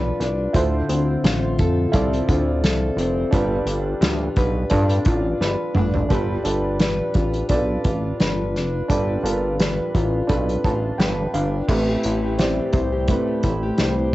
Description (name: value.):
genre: indie pop, bedroom pop.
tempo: 86 BPM.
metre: 4/4.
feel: swing 55% on 16ths.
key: unclear.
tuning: A4 = 439 Hz.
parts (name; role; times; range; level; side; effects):
fingerpicked plugged-in steel-string acoustic guitar; accompaniment; 0.0-14.1 s; D3 to C5; -24 LUFS; left 2 dB; wide subtle chorus, warbly pitch drift, cassette tape.
warm upright piano; accompaniment; 0.0-14.1 s; C4 to A5; -26 LUFS; right 2 dB; cassette tape.
chorused synth bass; bass; 0.0-14.1 s; F1 to G2; -23 LUFS; equal; none.
unplugged drum kit; drums; 0.2-14.0 s; crash cymbal, hi-hat, kick drum, snare drum, toms; -23 LUFS; equal; cassette tape.
room: light reverb.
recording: home recording on cassette, nothing above 7.9 kHz.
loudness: -18 LUFS.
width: side -17 dB against mid.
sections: 0.0-6.1 A section; 6.1-11.7 B section; 11.7-14.1 C section.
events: drum fill 5.4-6.1; upright piano fill 10.3-11.7.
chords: 0.0 G7; 0.6 Dm7; 3.3 G7; 11.7 Am7.